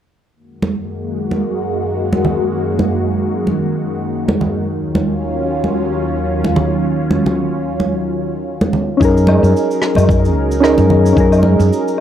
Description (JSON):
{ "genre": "sunset chillout", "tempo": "111 BPM", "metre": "4/4", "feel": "swing 55% on 16ths", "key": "F# major", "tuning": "A4 = 440 Hz", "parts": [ { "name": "lush unison pad", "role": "sustained chords", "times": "0.4-12.0 s", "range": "D#2 to A#4", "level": "-18 LUFS", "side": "equal", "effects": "chorus, phaser" }, { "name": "congas", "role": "percussion", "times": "0.6-11.6 s", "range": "none", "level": "-18 LUFS", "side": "right 2 dB", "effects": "none" }, { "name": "soft electric-piano-like synth keys", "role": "accompaniment", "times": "9.0-12.0 s", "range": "C#4 to A#4", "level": "-14 LUFS", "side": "moving between left 5 dB and right 3 dB", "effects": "chorus, auto-pan, vintage 12-bit sampler grit, tape echo" }, { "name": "woody fretless electric bass", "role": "bass", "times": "9.0-11.7 s", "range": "C#2 to F#2", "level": "-13 LUFS", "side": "equal", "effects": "analog chorus" }, { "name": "cabasa, woodblock and rim click", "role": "drums", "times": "9.0-12.0 s", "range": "none", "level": "-21 LUFS", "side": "left 1 dB", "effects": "none" }, { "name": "electronic kick drum", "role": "drums", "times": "9.0-11.3 s", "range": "none", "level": "-16 LUFS", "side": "equal", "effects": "none" } ], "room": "light reverb, small room ambience", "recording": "dry, gritty hardware recording", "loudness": "-13 LUFS", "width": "side -10 dB against mid", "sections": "0.4-9.0 A section; 9.0-12.0 B section", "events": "none", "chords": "0.4 F#69; 4.7 D#m9; 9.0 F#69" }